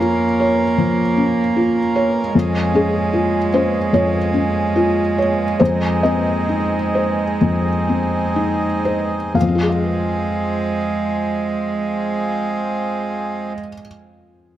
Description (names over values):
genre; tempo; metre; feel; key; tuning
neoclassical piano and strings; 60-78 BPM; 4/4; rubato; F minor; A4 = 441 Hz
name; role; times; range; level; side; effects
warm cello; second line; 0.0-13.5 s; Ab3 to Bb3; -21 LUFS; right 4 dB; none
felt-muted upright piano; accompaniment; 0.0-14.6 s; F2 to F5; -18 LUFS; left 2 dB; none
hand-pumped harmonium; sustained chords; 0.0-13.5 s; C4 to Bb4; -24 LUFS; equal; none
room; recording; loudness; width
moderate spring reverb, RT60 2.0 s; none; -16 LUFS; side -12 dB against mid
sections
0.0-9.3 A section; 9.3-13.3 B section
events
slowing down 0.8-9.3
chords
0.0 Bbm/F; 2.3 Db/F; 5.6 Ab/F; 9.3 Fm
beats
0.01 0.78 1.56 | 2.34 3.12 3.92 4.75 | 5.60 6.48 7.40 8.35 | 9.35 10.35 11.35 12.34